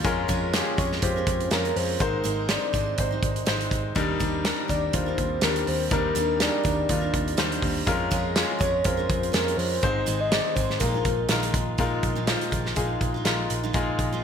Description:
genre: piano-driven pop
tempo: 123 BPM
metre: 4/4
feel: swing 56% on 16ths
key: unclear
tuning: A4 = 441 Hz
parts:
  - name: bright concert grand piano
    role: accompaniment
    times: 0.0-14.2 s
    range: Ab2 to D5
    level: -28 LUFS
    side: left 3 dB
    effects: none
  - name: mellow French horn section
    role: sustained chords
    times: 0.0-14.2 s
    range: C3 to F4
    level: -39 LUFS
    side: left 2 dB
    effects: none
  - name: picked steel-string acoustic guitar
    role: riff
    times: 0.0-14.2 s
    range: F2 to C5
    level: -34 LUFS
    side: right 8 dB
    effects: none
  - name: vintage muted picked electric bass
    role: bass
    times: 0.0-14.2 s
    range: Ab1 to F2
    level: -30 LUFS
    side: equal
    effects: none
  - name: loose indie drum kit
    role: drums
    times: 0.0-14.1 s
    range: hi-hat, kick drum, snare drum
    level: -27 LUFS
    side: right 1 dB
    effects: none
  - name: soft octave-layered synth lead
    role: melody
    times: 0.8-11.5 s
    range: Bb4 to Eb5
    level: -28 LUFS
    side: left 1 dB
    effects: chorus
room: moderate lush hall reverb, RT60 1.9 s, small room ambience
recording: bright 1980s-style digital production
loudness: -22 LUFS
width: side -7 dB against mid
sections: 0.0-11.8 A section; 11.8-14.2 B section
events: none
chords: 0.0 Db6/F; 2.0 Ab; 4.0 Ebmaj7; 7.9 Db6/F; 9.8 Ab; 10.8 Bb7sus4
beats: | 0.05 0.54 1.02 1.51 | 2.00 2.49 2.98 3.47 | 3.96 4.45 4.94 5.42 | 5.92 6.40 6.89 7.38 | 7.87 8.36 8.85 9.34 | 9.83 10.32 10.81 11.29 | 11.78 12.27 12.76 13.25 | 13.74 14.23

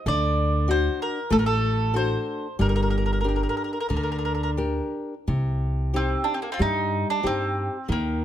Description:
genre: fado-style ballad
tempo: 92 BPM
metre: 4/4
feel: uneven beats, rubato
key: G minor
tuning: A4 = 444 Hz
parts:
  - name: mandolin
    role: melody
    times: 0.0-8.2 s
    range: Bb3 to D5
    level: -27 LUFS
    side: right 2 dB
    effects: none
  - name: nylon-string guitar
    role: accompaniment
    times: 0.1-8.2 s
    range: C3 to Bb4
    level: -27 LUFS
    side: left 3 dB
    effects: none
  - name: upright bass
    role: bass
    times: 0.1-8.2 s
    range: G1 to G2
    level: -25 LUFS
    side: right 1 dB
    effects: none
room: light reverb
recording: close, detailed microphones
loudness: -22 LUFS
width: side -11 dB against mid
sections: 0.0-5.3 A section; 5.3-8.2 B section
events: none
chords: 0.1 D; 2.6 Gm; 5.3 Cm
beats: | 0.06 0.69 1.31 1.94 | 2.60 3.25 3.90 4.59 | 5.28 5.94 6.60 7.25 | 7.90

